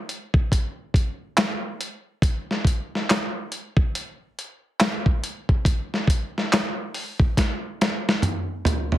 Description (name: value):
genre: R&B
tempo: 70 BPM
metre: 4/4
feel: swing 63% on 16ths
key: none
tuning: none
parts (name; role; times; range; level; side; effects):
- dusty soul sampler-style drum kit; drums; 0.1-9.0 s; handclaps, hi-hat, kick drum, snare drum, toms; -21 LUFS; equal; none
room: light reverb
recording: heavily compressed radio sound, multiband compression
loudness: -22 LUFS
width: side -14 dB against mid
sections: 0.0-9.0 A section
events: drum fill 7.4-9.0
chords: none